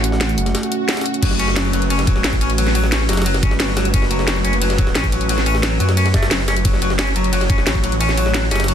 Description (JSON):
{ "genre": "dark technical drum and bass", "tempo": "177 BPM", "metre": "4/4", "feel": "straight", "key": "F# minor", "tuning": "A4 = 441 Hz", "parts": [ { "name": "dark analog pad", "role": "sustained chords", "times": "0.0-8.7 s", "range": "A3 to F#5", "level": "-25 LUFS", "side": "right 2 dB", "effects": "chorus, sidechain pumping" }, { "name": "wide detuned saw bass", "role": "bass", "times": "0.0-8.7 s", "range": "F#1 to F#2", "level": "-19 LUFS", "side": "equal", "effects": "chorus, sidechain pumping" }, { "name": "drum and bass drum kit", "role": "drums", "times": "0.0-8.7 s", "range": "crash cymbal, hi-hat, ride cymbal, snare drum", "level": "-22 LUFS", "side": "equal", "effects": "none" }, { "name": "jungle sampler-style drum kit", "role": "drums", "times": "0.0-8.7 s", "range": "hi-hat, snare drum", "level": "-28 LUFS", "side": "equal", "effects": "high-pass filter on hats, high-pass filter on snare" }, { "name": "swell", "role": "sound effects", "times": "0.6-1.2 s", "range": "none", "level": "-28 LUFS", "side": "equal", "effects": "none" }, { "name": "clean electric guitar", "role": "arpeggios", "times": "1.2-8.7 s", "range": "F#3 to C#4", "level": "-22 LUFS", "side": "left 3 dB", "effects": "sidechain pumping, ping-pong delay" }, { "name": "electronic kick drum", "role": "drums", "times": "1.2-7.8 s", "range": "none", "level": "-18 LUFS", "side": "equal", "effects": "none" } ], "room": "light reverb", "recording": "dense, heavily limited modern master", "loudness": "-15 LUFS", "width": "side -9 dB against mid", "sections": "0.0-8.7 A section", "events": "swell 0.6-1.2", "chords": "0.0 F#m" }